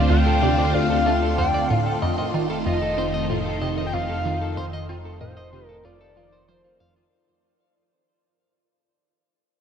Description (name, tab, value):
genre	ambient, sequencer-driven space music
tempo	94 BPM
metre	4/4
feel	straight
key	unclear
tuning	A4 = 439 Hz
part	pulse-width lead	melody	0.0-7.0 s	C5 to G5	-26 LUFS	left 1 dB	chorus, tape echo
part	phased string machine	sustained chords	0.0-7.1 s	D3 to C5	-25 LUFS	equal	ensemble chorus, phaser
part	semi-hollow electric guitar	arpeggios	0.0-7.0 s	F4 to F5	-30 LUFS	right 1 dB	auto-pan, tape echo
part	fat analog bass	bass	0.0-7.1 s	F1 to D2	-26 LUFS	equal	none
part	resonant blip pluck	riff	0.1-7.0 s	D2 to C4	-27 LUFS	equal	phaser, wide subtle chorus, tape echo
room	wet huge ambient reverb, RT60 9.2 s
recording	worn, warbling old tape, cassette tape, warbly pitch drift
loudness	-20 LUFS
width	side -8 dB against mid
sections	0.0-7.1 A section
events	fade-out 0.3-7.1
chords	0.0 Dm7; 2.0 F7